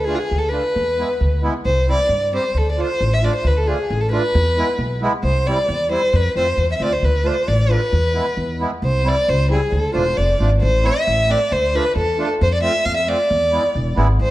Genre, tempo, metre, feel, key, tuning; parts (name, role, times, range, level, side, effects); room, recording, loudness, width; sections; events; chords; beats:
klezmer; 134 BPM; 2/4; straight; D dorian sharp4; A4 = 439 Hz
warm violin; melody; 0.0-14.3 s; F4 to F5; -19 LUFS; equal
upright bass; bass; 0.0-14.3 s; E1 to G2; -19 LUFS; equal
accordion; accompaniment; 0.1-14.1 s; G3 to G4; -25 LUFS; right 2 dB; light tremolo tuning
moderate recital hall reverb, RT60 1.7 s; dark, warm production; -16 LUFS; side -16 dB against mid
0.0-3.4 A section; 3.4-10.6 A section; 10.6-14.3 B section
0.0 Dm; 0.7 E; 1.6 C5; 2.5 Dm; 4.3 E; 5.2 C; 6.1 F; 7.0 Dm; 7.9 E; 8.8 C; 9.7 Dm; 10.6 Am; 11.5 Dm; 12.4 F; 13.3 E
0.30 | 0.75 1.20 | 1.65 2.10 | 2.55 3.00 | 3.44 3.89 | 4.34 4.79 | 5.24 5.68 | 6.13 6.58 | 7.03 7.47 | 7.92 8.37 | 8.82 9.27 | 9.71 10.16 | 10.61 11.06 | 11.51 11.95 | 12.40 12.85 | 13.29 13.74 | 14.19